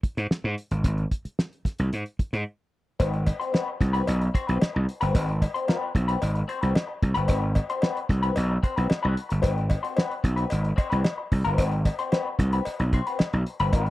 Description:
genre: funk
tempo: 112 BPM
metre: 4/4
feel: straight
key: unclear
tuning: A4 = 440 Hz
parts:
  - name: gritty slap bass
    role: bass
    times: 0.0-13.9 s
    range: G1 to Ab2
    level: -24 LUFS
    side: equal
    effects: overdrive
  - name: cloth-damped thuddy drum kit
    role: drums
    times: 0.0-13.9 s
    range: hi-hat, kick drum, snare drum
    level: -23 LUFS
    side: equal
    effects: none
  - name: clean electric guitar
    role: accompaniment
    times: 3.0-13.9 s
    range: C4 to C5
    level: -29 LUFS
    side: left 4 dB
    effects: wah, spring reverb
  - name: cowbell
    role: percussion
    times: 3.0-13.9 s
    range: none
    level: -36 LUFS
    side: left 2 dB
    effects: none
room: little or no reverb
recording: dry, close 1970s-style studio recording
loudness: -23 LUFS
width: side -17 dB against mid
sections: 0.0-3.0 A section; 3.0-13.9 B section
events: break 2.5-3.0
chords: 0.0 N.C.; 3.0 Ab7#9

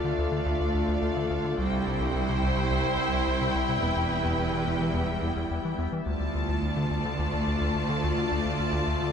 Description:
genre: cinematic, hybrid orchestral and electronic film score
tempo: 107 BPM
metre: 4/4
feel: straight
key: D minor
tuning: A4 = 439 Hz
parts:
  - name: warm symphonic violin section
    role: melody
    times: 0.0-9.1 s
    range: F5 to A5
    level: -35 LUFS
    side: left 4 dB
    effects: none
  - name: rich symphonic violin section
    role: second line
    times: 0.0-9.1 s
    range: A4 to D5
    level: -36 LUFS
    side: equal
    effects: none
  - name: rich symphonic viola section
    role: accompaniment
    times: 0.0-9.1 s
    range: D4 to F4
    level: -35 LUFS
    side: equal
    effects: none
  - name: evolving wavetable pad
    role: sustained chords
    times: 0.0-9.1 s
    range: G3 to E5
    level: -35 LUFS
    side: left 2 dB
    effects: chorus, built-in reverb
  - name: mellow French horn section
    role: sustained chords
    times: 0.0-9.1 s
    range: G3 to F4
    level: -35 LUFS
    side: left 5 dB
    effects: none
  - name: rubbery square bass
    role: riff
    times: 0.0-9.1 s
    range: C2 to E3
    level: -31 LUFS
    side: left 1 dB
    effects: none
  - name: clear symphonic cello section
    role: bass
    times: 0.0-9.1 s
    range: C2 to E2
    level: -33 LUFS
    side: right 2 dB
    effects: none
  - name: rich symphonic double bass section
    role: bass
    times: 0.0-9.1 s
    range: E1 to D2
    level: -32 LUFS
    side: right 4 dB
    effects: none
room: light reverb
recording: close, detailed microphones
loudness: -25 LUFS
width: side -7 dB against mid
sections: 0.0-9.1 A section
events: none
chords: 0.0 Dm; 1.6 C; 3.8 Em; 6.1 Dm

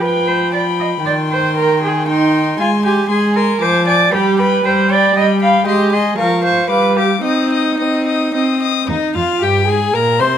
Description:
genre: quick classical-period movement for string quartet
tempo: 116 BPM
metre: 3/4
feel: rubato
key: C minor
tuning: A4 = 440 Hz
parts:
  - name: rich violin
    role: melody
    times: 0.0-10.4 s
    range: Eb5 to Eb6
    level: -20 LUFS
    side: left 12 dB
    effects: none
  - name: dark violin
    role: second line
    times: 0.0-10.3 s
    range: Eb4 to Ab5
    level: -22 LUFS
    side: left 3 dB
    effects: none
  - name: warm viola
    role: accompaniment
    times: 0.0-10.4 s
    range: Eb3 to C5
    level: -17 LUFS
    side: equal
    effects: none
  - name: warm cello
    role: bass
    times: 0.0-10.4 s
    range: Eb2 to F5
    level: -16 LUFS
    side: right 3 dB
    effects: none
room: moderate recital hall reverb, RT60 1.4 s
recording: none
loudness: -12 LUFS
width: side -9 dB against mid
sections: 0.0-8.9 A section; 8.9-10.4 A section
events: none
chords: 0.0 G7/F; 1.1 Cm/Eb; 2.6 Ab; 3.6 Ddim/F; 4.1 G; 5.7 Ab; 6.2 Db/F; 6.7 G7; 7.2 Cm

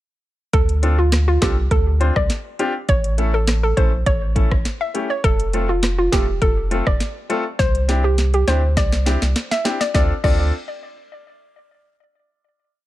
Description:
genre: dancehall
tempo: 102 BPM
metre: 4/4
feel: straight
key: D minor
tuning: A4 = 442 Hz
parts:
  - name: hollow square pluck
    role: melody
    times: 0.5-10.5 s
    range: F4 to E5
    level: -23 LUFS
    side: equal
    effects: chorus, tape echo
  - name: warm sub bass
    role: bass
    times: 0.5-10.5 s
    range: E1 to D2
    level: -19 LUFS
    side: equal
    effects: none
  - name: afro-pop drum kit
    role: drums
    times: 0.5-10.4 s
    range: crash cymbal, hi-hat, kick drum, rim click, snare drum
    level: -20 LUFS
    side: equal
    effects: vintage 12-bit sampler grit
  - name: clear baby grand piano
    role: accompaniment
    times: 0.8-10.5 s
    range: A3 to C5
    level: -24 LUFS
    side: left 2 dB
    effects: none
room: little or no reverb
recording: none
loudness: -16 LUFS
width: side -15 dB against mid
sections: 0.5-9.9 chorus; 9.9-12.3 final chord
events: drum fill 7.6-9.9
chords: 0.5 Dm7; 2.9 A; 5.2 F; 7.6 Cadd9; 9.9 Dm7

